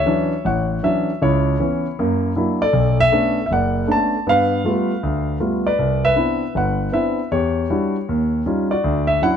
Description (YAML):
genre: solo jazz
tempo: 157 BPM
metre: 4/4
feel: swing 64% on 8ths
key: D major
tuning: A4 = 443 Hz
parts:
  - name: warm concert grand piano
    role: solo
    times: 0.0-9.4 s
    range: F#1 to A5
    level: -16 LUFS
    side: equal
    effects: none
room: moderate club reverb, RT60 0.9 s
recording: none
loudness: -17 LUFS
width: side -8 dB against mid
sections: 0.0-9.4 A section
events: none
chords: 0.0 Dmaj9; 1.2 C#m7; 2.0 F#7b13; 2.7 Bm9; 4.3 G9; 5.8 Cmaj9; 7.3 Em9; 8.1 Eb9; 8.8 Dmaj9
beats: 0.07 0.45 0.83 | 1.21 1.59 1.97 2.35 | 2.73 3.12 3.50 3.88 | 4.26 4.64 5.02 5.40 | 5.79 6.17 6.55 6.93 | 7.31 7.69 8.07 8.45 | 8.84 9.22